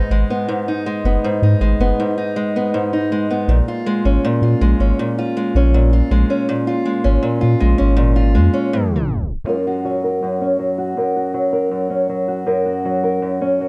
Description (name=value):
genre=folktronica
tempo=80 BPM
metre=4/4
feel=straight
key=F# major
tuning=A4 = 441 Hz
part: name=fingerpicked old ladder-braced acoustic guitar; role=arpeggios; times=0.0-13.7 s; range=F#2 to A#4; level=-20 LUFS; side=equal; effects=vintage 12-bit sampler grit, low-pass filter, delay, plate reverb
part: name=warm sub bass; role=bass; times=0.1-8.5 s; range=F#1 to A#2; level=-17 LUFS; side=equal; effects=none
room=moderate studio reverb, RT60 0.6 s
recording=dark, warm production, tape stop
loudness=-18 LUFS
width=mono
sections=0.0-9.5 A section; 9.5-13.7 B section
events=tape stop 8.7-9.5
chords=0.0 G#m; 3.5 A#m7; 9.5 F#